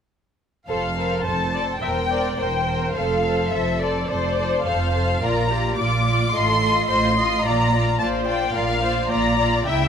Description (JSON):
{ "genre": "quick classical-period movement for string orchestra", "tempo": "107 BPM", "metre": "4/4", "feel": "rubato", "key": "F major", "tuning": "A4 = 439 Hz", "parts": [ { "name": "rich studio violin section", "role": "melody", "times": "0.7-9.9 s", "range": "C5 to D6", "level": "-23 LUFS", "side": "left 2 dB", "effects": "none" }, { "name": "warm studio violin section", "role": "second line", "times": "0.7-9.9 s", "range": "E4 to E5", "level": "-26 LUFS", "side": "left 4 dB", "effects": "none" }, { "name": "warm studio viola section", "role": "accompaniment", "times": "0.7-9.9 s", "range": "F4 to E5", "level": "-26 LUFS", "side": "right 1 dB", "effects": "none" }, { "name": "rich symphonic cello section", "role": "bass", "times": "0.7-9.9 s", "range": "E2 to C#3", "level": "-27 LUFS", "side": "right 2 dB", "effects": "none" }, { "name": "warm studio double bass section", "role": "bass", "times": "0.7-9.9 s", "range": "E1 to C#2", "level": "-26 LUFS", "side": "right 3 dB", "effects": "none" } ], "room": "light reverb", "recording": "close, detailed microphones", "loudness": "-19 LUFS", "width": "side -7 dB against mid", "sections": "0.7-9.9 A section", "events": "none", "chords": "0.7 F; 1.8 C7/E; 3.0 F; 5.2 Bb; 6.3 F7/A; 7.5 Bb" }